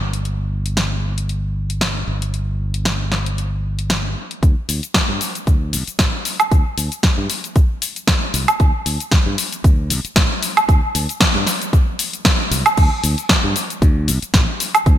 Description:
nu-disco, nu disco; 115 BPM; 4/4; swing 55% on 16ths; A4 = 444 Hz
modern bright fingered electric bass; bass; 0.0-15.0 s; G1 to G2; -21 LUFS; equal; sidechain pumping
house drum kit; drums; 0.1-15.0 s; crash cymbal, hi-hat, shaker, snare drum, woodblock; -18 LUFS; equal; gated reverb
electronic kick drum; drums; 4.4-15.0 s; -15 LUFS; equal
light reverb, digital ambience; bright 1980s-style digital production; -15 LUFS; side -12 dB against mid
0.0-4.4 A section; 4.4-12.8 B section; 12.8-15.0 C section
build-up 4.4-12.8; drop 12.8-15.0

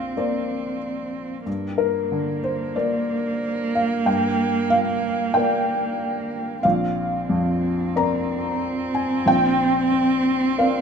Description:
neoclassical piano and strings; 92 BPM; 4/4; rubato; A4 = 440 Hz
rich cello; second line; 0.0-10.8 s; Bb3 to C4; -24 LUFS; right 2 dB
felt-muted upright piano; accompaniment; 0.0-10.8 s; Bb1 to Bb5; -22 LUFS; left 1 dB
moderate recital hall reverb, RT60 1.6 s; minimal, uncompressed stereo recording; -20 LUFS; side -6 dB against mid
0.0-10.8 A section
0.0 Bbadd9; 1.5 Gm; 6.6 Bbadd9

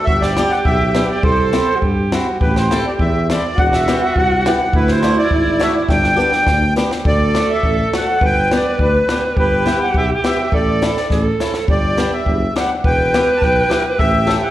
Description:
alpine folk, alpine dance band; 104 BPM; 2/4; straight; G major, D major from 7.1 s; A4 = 443 Hz
accordion; melody; 0.0-14.5 s; B4 to A5; -18 LUFS; equal; light tremolo tuning, plate reverb, slapback echo
bright alto saxophone; second line; 0.1-14.5 s; D4 to B4; -20 LUFS; right 2 dB; plate reverb
mellow tuba; bass; 0.1-14.4 s; E1 to G2; -20 LUFS; equal
compact cocktail drum kit; drums; 0.1-14.4 s; hi-hat, kick drum, snare drum; -20 LUFS; equal
picked swing-style acoustic guitar; accompaniment; 0.4-14.4 s; A3 to A4; -22 LUFS; left 3 dB; plate reverb, slapback echo
moderate club reverb, RT60 0.8 s; live gig heard through the venue's PA, recital hall reverb; -13 LUFS; side -14 dB against mid
0.0-7.1 A section; 7.1-14.5 B section
drum fill 5.9-7.1, 11.1-11.7
0.1 G; 1.2 C; 2.4 Am; 3.6 Emadd9; 4.7 Dadd9; 5.9 G; 7.1 D; 8.2 G; 9.4 Em/G; 10.5 Asus4; 11.1 A; 11.7 G; 12.8 Em; 14.0 A

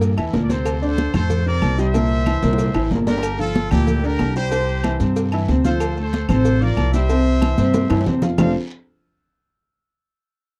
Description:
latin, salsa; 186 BPM; 4/4; straight; F major; A4 = 436 Hz
bright upright piano; accompaniment; 0.0-8.5 s; A2 to A5; -24 LUFS; equal
upright bass; bass; 0.0-8.5 s; F1 to G2; -23 LUFS; equal
agogo bells and timbales; percussion; 0.0-8.5 s; -34 LUFS; equal
congas; percussion; 0.0-8.5 s; -26 LUFS; equal
cowbell and bongos; percussion; 0.0-8.5 s; -32 LUFS; equal
guiro; percussion; 0.0-8.5 s; -46 LUFS; equal
maracas; percussion; 0.0-8.5 s; -46 LUFS; equal
claves; percussion; 0.2-8.5 s; -41 LUFS; equal
brilliant horn section; melody; 0.4-8.5 s; E4 to F5; -28 LUFS; equal; slapback echo
little or no reverb; dry, close 1970s-style studio recording; -19 LUFS; mono
0.0-3.2 A section; 3.2-8.4 B section; 8.4-9.7 C section
drum fill 2.4-3.2, 7.6-8.4
0.0 C7; 0.7 Dm7; 1.9 C7; 3.2 Gm7; 4.5 C; 5.8 Dm7; 7.1 C; 8.4 F6

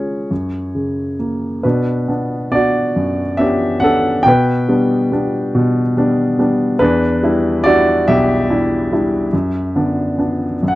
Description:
classical, lyrical solo piano; 47 BPM (dotted quarters); 6/8; rubato; B minor; A4 = 440 Hz
warm grand piano; solo; 0.0-10.8 s; B1 to G5; -14 LUFS; equal
moderate studio reverb, RT60 0.5 s; dark, warm production; -14 LUFS; side -17 dB against mid
0.0-1.6 A section; 1.6-10.8 B section
0.3 F#; 1.6 Bmadd9; 4.3 G/B; 6.8 Em7; 9.3 Bm/F#

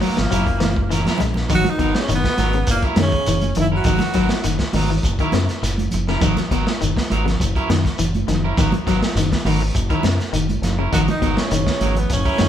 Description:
afrobeat; 102 BPM; 4/4; straight; G# minor; A4 = 439 Hz
semi-hollow electric guitar; arpeggios; 0.0-12.5 s; B2 to G#3; -24 LUFS; left 4 dB
electric guitar at the edge of break-up; stabs; 0.0-12.4 s; F#3 to A#4; -26 LUFS; right 3 dB; spring reverb
crunchy breakbeat drum kit; drums; 0.0-12.5 s; hi-hat, kick drum, snare drum; -23 LUFS; equal
congas; percussion; 0.0-12.5 s; -26 LUFS; right 4 dB
shekere; percussion; 0.0-12.5 s; -29 LUFS; right 1 dB
bright tenor saxophone; melody; 0.1-4.6, 10.9-12.5 s; A#3 to F#4; -24 LUFS; right 2 dB
breathy alto saxophone; second line; 0.1-4.6, 10.9-12.5 s; A#3 to F#4; -30 LUFS; right 2 dB
warm trombone section; second line; 0.1-4.6, 10.9-12.5 s; A#2 to F#3; -31 LUFS; left 2 dB
fingered electric bass; bass; 0.2-12.5 s; F#1 to F#2; -22 LUFS; equal
moderate large studio reverb, RT60 1.1 s; band playing live in one room; -16 LUFS; side -10 dB against mid
0.0-1.5 A section; 1.5-12.5 B section
drum fill 0.6-1.5
0.3 F#7; 1.5 G#m9; 2.7 F#7; 3.9 G#m9; 5.0 F#7; 6.2 G#m9; 7.4 F#7; 8.6 G#m9; 9.8 F#7; 10.9 G#m9

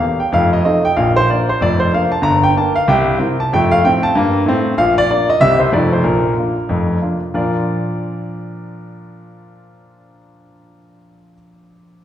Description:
jazz, stride piano; 189 BPM; 4/4; swing 62% on 8ths; Bb major; A4 = 439 Hz
warm grand piano; solo; 0.0-12.0 s; F1 to Bb5; -13 LUFS; equal
wet recital hall reverb, RT60 1.6 s; recorded in a church or concert hall; -13 LUFS; side -10 dB against mid
0.0-7.3 A section; 7.3-9.9 B section
0.3 F7; 1.0 Bb; 2.2 Gm; 2.9 C7; 3.5 F; 4.8 Bb; 5.4 C7; 5.7 F7; 6.1 Bb

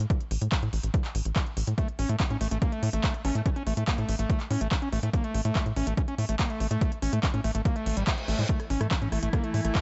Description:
psychedelic trance; 143 BPM; 4/4; straight; A major; A4 = 440 Hz
tight sequencer bass; bass; 0.0-9.7 s; A1 to A2; -30 LUFS; equal
big-room dance drum kit; drums; 0.0-9.8 s; handclaps, hi-hat, rim click; -38 LUFS; equal
electronic kick drum; drums; 0.1-9.8 s; -29 LUFS; equal
screaming distorted acid line; riff; 1.8-9.8 s; G3 to C#4; -34 LUFS; equal; distortion, chorus, sidechain pumping, digital delay
metallic wobble bass; second line; 3.2-3.4 s; A3; -48 LUFS; equal; ensemble chorus, sidechain pumping, high-pass filter, digital delay
reverse cymbal; sound effects; 7.8-8.5 s; -40 LUFS; equal
evolving wavetable pad; sustained chords; 8.8-9.8 s; E3 to E4; -38 LUFS; equal; ensemble chorus, built-in reverb, phaser, sidechain pumping
digital ambience; nothing above 7.9 kHz; -28 LUFS; mono
0.0-9.8 A section
reverse cymbal 7.8-8.5
0.0 A5

